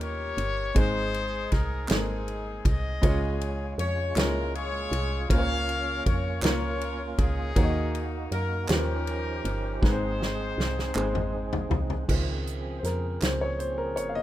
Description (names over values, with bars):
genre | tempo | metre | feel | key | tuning
slow gospel | 53 BPM (dotted quarters) | 6/8 | straight | Db major | A4 = 442 Hz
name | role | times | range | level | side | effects
clear horn section | melody | 0.0-11.7 s | C4 to F5 | -32 LUFS | left 3 dB | none
warm upright piano | accompaniment | 0.0-14.2 s | Ab2 to C6 | -32 LUFS | left 1 dB | none
woody FM bass | bass | 0.0-14.2 s | Gb1 to Gb2 | -31 LUFS | equal | none
natural country drum kit | drums | 0.0-14.1 s | crash cymbal, hi-hat, kick drum, ride cymbal, snare drum, toms | -27 LUFS | equal | none
group handclap | percussion | 1.9-13.6 s | none | -36 LUFS | right 4 dB | none
tonewheel organ | sustained chords | 3.0-14.2 s | Db3 to C5 | -36 LUFS | right 4 dB | slow rotary speaker, overdrive, chorus vibrato
room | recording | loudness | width
studio ambience | rough home demo mix | -25 LUFS | side -14 dB against mid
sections
0.0-12.1 A section; 12.1-14.2 B section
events
drum fill 9.8-12.1; upright piano solo 12.1-14.2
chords
0.0 Eb7; 0.8 Ab; 3.0 Db; 5.3 Bbm/Db; 7.6 Ebm; 8.7 Eb13; 9.8 Ab; 12.1 Dbmaj7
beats
| 0.76 1.90 | 3.03 4.17 | 5.30 6.43 | 7.57 8.70 | 9.83 10.96 | 12.09 13.22